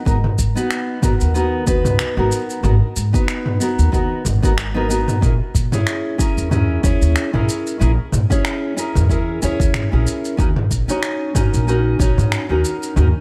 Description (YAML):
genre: sunset chillout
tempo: 93 BPM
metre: 4/4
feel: swing 56% on 16ths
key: G# minor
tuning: A4 = 441 Hz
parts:
  - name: nylon-string guitar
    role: accompaniment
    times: 0.0-13.1 s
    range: B3 to C#5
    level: -23 LUFS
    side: equal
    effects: delay
  - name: upright bass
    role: bass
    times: 0.1-13.1 s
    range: G#1 to A#2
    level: -20 LUFS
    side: equal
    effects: none
  - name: deep house drum kit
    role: drums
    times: 0.1-13.1 s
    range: finger snaps, shaker, toms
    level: -24 LUFS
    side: equal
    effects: none
  - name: electronic kick drum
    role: drums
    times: 0.1-12.1 s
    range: none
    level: -22 LUFS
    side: equal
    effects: none
room: light reverb, digital ambience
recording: none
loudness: -18 LUFS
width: mono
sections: 0.0-13.2 A section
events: none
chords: 0.0 G#m9; 5.2 A#m7b5; 10.4 D#m7